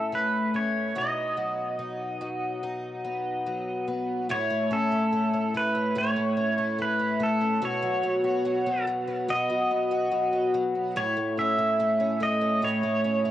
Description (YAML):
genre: dream pop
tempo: 72 BPM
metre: 4/4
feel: straight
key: A lydian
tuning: A4 = 440 Hz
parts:
  - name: pedal steel guitar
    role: melody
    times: 0.0-13.3 s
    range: A4 to E5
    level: -27 LUFS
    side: right 2 dB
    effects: analog delay
  - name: picked twelve-string acoustic guitar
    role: arpeggios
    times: 0.0-13.3 s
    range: A2 to F#4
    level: -27 LUFS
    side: left 1 dB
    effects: analog chorus, cassette tape, analog delay
room: moderate spring reverb, RT60 2.1 s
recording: home recording on cassette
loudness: -24 LUFS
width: side -12 dB against mid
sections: 0.0-4.3 A section; 4.3-13.3 B section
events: none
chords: 0.0 A; 1.0 B; 4.3 A; 7.6 B; 11.0 A